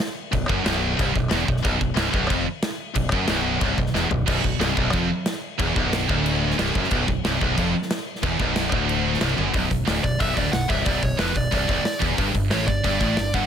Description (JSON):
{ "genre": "heavy metal", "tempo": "182 BPM", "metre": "4/4", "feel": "straight", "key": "B minor", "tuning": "A4 = 439 Hz", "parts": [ { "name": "big rock drum kit", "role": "drums", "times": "0.0-13.4 s", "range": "crash cymbal, hi-hat, kick drum, snare drum, toms", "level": "-26 LUFS", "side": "equal", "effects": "none" }, { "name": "scooped high-gain guitar", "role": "riff", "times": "0.3-13.5 s", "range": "B1 to A2", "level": "-25 LUFS", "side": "right 9 dB", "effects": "distortion" }, { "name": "tight distorted guitar", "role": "riff", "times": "0.3-13.5 s", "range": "B1 to A2", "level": "-27 LUFS", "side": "left 12 dB", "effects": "distortion" }, { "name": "growling fingered electric bass", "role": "bass", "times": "0.3-13.5 s", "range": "B0 to A1", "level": "-28 LUFS", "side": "left 1 dB", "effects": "overdrive" }, { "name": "thick fuzz guitar", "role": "riff", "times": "4.3-9.5 s", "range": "B1 to F#2", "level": "-28 LUFS", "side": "right 1 dB", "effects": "distortion" }, { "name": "high-gain lead guitar", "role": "melody", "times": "10.0-13.5 s", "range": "B4 to F#5", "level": "-27 LUFS", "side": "equal", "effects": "distortion, tape echo" } ], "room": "small room ambience", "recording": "none", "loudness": "-20 LUFS", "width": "side -8 dB against mid", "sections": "0.0-9.5 A section; 9.5-13.5 B section", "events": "drum fill 3.9-4.3, 9.4", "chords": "0.0 Bm; 12.2 G5" }